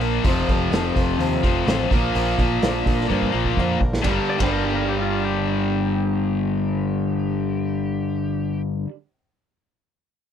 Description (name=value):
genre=classic rock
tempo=126 BPM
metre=4/4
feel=straight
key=G minor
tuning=A4 = 440 Hz
part: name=fingerpicked twelve-string acoustic guitar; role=accompaniment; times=0.0-8.9 s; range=G2 to Bb4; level=-30 LUFS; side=left 4 dB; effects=none
part: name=biting overdriven guitar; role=riff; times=0.0-8.9 s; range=F2 to Bb3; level=-24 LUFS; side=left 10 dB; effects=none
part: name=raw garage guitar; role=riff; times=0.0-8.9 s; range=F2 to Bb3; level=-26 LUFS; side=right 15 dB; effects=overdrive
part: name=growling picked electric bass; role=bass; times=0.0-8.8 s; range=F1 to G2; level=-26 LUFS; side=right 1 dB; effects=overdrive
part: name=vintage drum kit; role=drums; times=0.0-4.5 s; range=hi-hat, kick drum, ride cymbal, snare drum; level=-24 LUFS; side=right 1 dB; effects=none
part: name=clean lap steel guitar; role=second line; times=4.3-8.6 s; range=F4 to D5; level=-33 LUFS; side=left 3 dB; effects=none
room=little or no reverb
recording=none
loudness=-19 LUFS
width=side -8 dB against mid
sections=0.0-4.0 A section; 4.0-7.8 B section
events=drum fill 3.1-4.0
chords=0.2 F; 1.9 Bb; 4.0 Gm